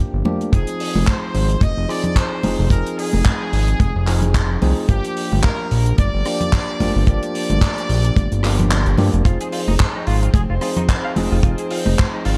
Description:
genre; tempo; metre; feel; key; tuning
nu-disco, nu disco; 110 BPM; 4/4; swing 56% on 16ths; F dorian; A4 = 440 Hz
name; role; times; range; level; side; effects
brilliant trumpet section; melody; 0.0-8.9 s; G4 to Eb5; -29 LUFS; equal; tape echo
barky tine electric piano; accompaniment; 0.0-12.4 s; F3 to Ab4; -28 LUFS; equal; overdrive, sidechain pumping, low-pass filter
fat analog bass; bass; 0.1-12.4 s; F1 to G2; -20 LUFS; equal; none
congas; percussion; 0.2-12.0 s; none; -27 LUFS; equal; none
damped 70s drum kit; drums; 0.4-12.4 s; handclaps, hi-hat, rim click; -29 LUFS; equal; small room reverb
kick drum; drums; 0.5-12.1 s; none; -18 LUFS; equal; small room reverb
warm studio violin section; sustained chords; 9.3-12.4 s; C4 to C5; -32 LUFS; equal; sidechain pumping
direct-recorded clean electric guitar; riff; 9.3-12.4 s; C4 to F5; -31 LUFS; equal; ensemble chorus, tape echo
room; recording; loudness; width
light reverb, studio ambience; dark, warm production; -18 LUFS; mono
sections
0.0-12.4 A section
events
filter sweep on tine electric piano 0.0-12.4; kick drops out 8.7-9.3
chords
0.0 Gm7; 0.5 Fm7; 4.9 Gm7; 9.3 Fm7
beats
| 0.53 1.07 1.62 2.17 | 2.71 3.26 3.80 4.35 | 4.89 5.44 5.98 6.53 | 7.07 7.62 8.16 8.71 | 9.26 9.80 10.35 10.89 | 11.44 11.98

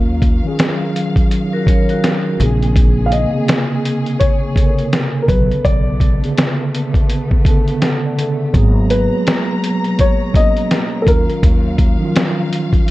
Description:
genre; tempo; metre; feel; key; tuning
lo-fi hip hop; 83 BPM; 4/4; swing 60% on 16ths; unclear; A4 = 440 Hz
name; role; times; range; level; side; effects
dark upright piano; melody; 0.0-12.5 s; A4 to E#5; -21 LUFS; left 2 dB; low-pass filter, analog delay
mellow tine electric piano; accompaniment; 0.0-12.9 s; B#2 to A5; -19 LUFS; right 1 dB; medium stereo tremolo, cassette tape, low-pass filter
warm studio string section; sustained chords; 0.0-12.9 s; B2 to A#5; -26 LUFS; equal; low-pass filter
upright bass; bass; 0.0-11.9 s; G#1 to D#2; -17 LUFS; equal; none
lo-fi sampler-style drum kit; drums; 0.2-12.9 s; hi-hat, kick drum, snare drum; -15 LUFS; equal; none
vibraphone with medium hard mallets; second line; 1.5-2.4 s; F#4 to C#5; -23 LUFS; equal; low-pass filter, analog delay
room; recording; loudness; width
light reverb, studio reverb; dark, warm production; -13 LUFS; side -17 dB against mid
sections
0.0-12.9 A section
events
tine electric piano fill 7.1-8.5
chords
0.0 D#m9; 2.4 A#m9; 5.3 Bm9; 8.5 G#m9; 11.1 D#m9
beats
0.59 1.31 2.04 | 2.76 3.48 4.21 4.93 | 5.65 6.37 7.10 7.82 | 8.54 9.27 9.99 10.71 | 11.43 12.16 12.88

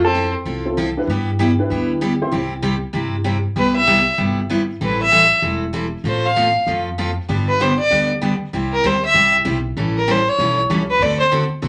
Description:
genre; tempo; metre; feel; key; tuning
country, western swing; 193 BPM; 4/4; swing 63% on 8ths; C major; A4 = 444 Hz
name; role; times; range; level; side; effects
clear fiddle; second line; 0.0-0.3, 3.6-11.3 s; C4 to F5; -18 LUFS; equal; none
picked steel-string acoustic guitar; accompaniment; 0.0-11.7 s; C3 to A4; -23 LUFS; equal; none
upright bass; bass; 0.0-11.7 s; E1 to G2; -27 LUFS; equal; none
dark upright piano; accompaniment; 0.7-2.3 s; C4 to C5; -25 LUFS; equal; none
room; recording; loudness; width
wet club reverb, RT60 0.6 s; none; -18 LUFS; mono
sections
0.0-3.6 A section; 3.6-11.7 B section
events
fiddle solo 3.6-11.7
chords
0.0 Fmaj7; 1.1 G6; 2.3 C; 3.6 Cmaj7; 4.8 Am7; 6.0 F/A; 7.3 G; 8.5 C; 9.8 A7; 11.0 D7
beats
0.14 0.45 0.77 | 1.08 1.39 1.70 2.01 | 2.32 2.63 2.94 3.25 | 3.56 3.88 4.19 4.50 | 4.81 5.12 5.43 5.74 | 6.05 6.36 6.67 6.98 | 7.29 7.60 7.91 8.22 | 8.53 8.84 9.15 9.46 | 9.77 10.08 10.39 10.70 | 11.01 11.32 11.63

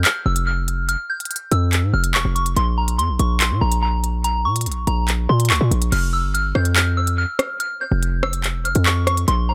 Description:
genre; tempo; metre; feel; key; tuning
hip hop, drill; 143 BPM; 4/4; half-time; unclear; A4 = 443 Hz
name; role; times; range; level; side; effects
soft synth bell; melody; 0.0-9.5 s; Bb5 to G6; -26 LUFS; equal; chorus, low-pass filter, dub echo
hard-hitting 808-style bass; bass; 0.0-9.5 s; E1 to Bb2; -21 LUFS; equal; none
drill drum kit; drums; 0.0-9.4 s; crash cymbal, handclaps, hi-hat, rim click; -24 LUFS; equal; dub echo
room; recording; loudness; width
little or no reverb; echo-heavy mix; -20 LUFS; mono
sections
0.0-5.9 A section; 5.9-9.5 B section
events
none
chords
0.0 N.C.; 2.6 Bbm; 5.9 N.C.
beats
0.05 0.47 | 0.89 1.31 1.73 2.15 | 2.56 2.98 3.40 3.82 | 4.24 4.66 5.08 5.50 | 5.92 6.34 6.76 7.18 | 7.60 8.02 8.44 8.86 | 9.28

